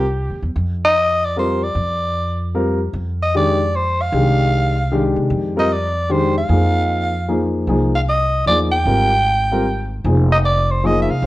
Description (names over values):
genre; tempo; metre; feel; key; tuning
modal jazz; 152 BPM; 3/4; swing 65% on 8ths; F dorian; A4 = 440 Hz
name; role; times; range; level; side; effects
growling soprano saxophone; melody; 0.0-11.3 s; G4 to G5; -18 LUFS; equal; none
dark baby grand piano; accompaniment; 0.0-11.3 s; Eb3 to Bb4; -20 LUFS; left 2 dB; none
upright bass; bass; 0.0-11.3 s; F1 to C3; -20 LUFS; equal; none
room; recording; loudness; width
light reverb; worn, warbling old tape, cassette tape, warbly pitch drift; -15 LUFS; side -17 dB against mid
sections
0.0-11.3 A section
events
none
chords
0.0 Fm9